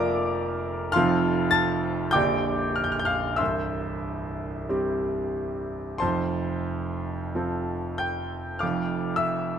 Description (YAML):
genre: classical, romantic nocturne for solo piano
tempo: 43-52 BPM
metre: 4/4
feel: rubato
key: F major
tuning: A4 = 440 Hz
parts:
  - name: bright concert grand piano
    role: solo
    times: 0.0-9.6 s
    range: Bb0 to A6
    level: -24 LUFS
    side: equal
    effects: none
room: moderate recital hall reverb, RT60 1.6 s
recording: close, detailed microphones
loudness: -24 LUFS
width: side -8 dB against mid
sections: 0.0-9.6 A section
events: none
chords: 0.0 Bb/F; 1.0 F; 2.1 Gm/Bb; 3.4 C; 6.0 F; 8.6 Bb/F (rootless)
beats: | 0.95 2.14 3.40 4.70 | 6.03 7.35 8.62